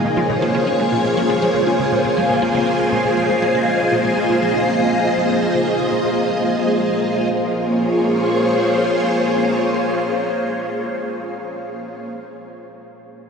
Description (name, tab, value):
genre	ambient, sequencer-driven space music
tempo	120 BPM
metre	4/4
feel	straight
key	Bb minor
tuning	A4 = 440 Hz
part	string machine, full ensemble	sustained chords	0.0-12.1 s	Bb3 to Eb5	-17 LUFS	equal	phaser, ensemble chorus
part	wide unison pluck	arpeggios	0.0-7.5 s	Ab3 to F4	-29 LUFS	left 1 dB	none
part	resonant blip pluck	riff	0.0-7.5 s	Bb2 to F4	-28 LUFS	equal	phaser, analog delay
part	bubbling stepped-filter texture	texture	0.0-7.3 s	Ab4 to Ab5	-28 LUFS	equal	none
room	wet cathedral reverb, RT60 5.9 s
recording	in a vast, echoing space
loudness	-16 LUFS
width	side -6 dB against mid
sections	0.0-7.3 A section; 7.3-11.3 B section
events	fade-out on synth arpeggio sound 0.0-7.3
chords	0.0 Bbm7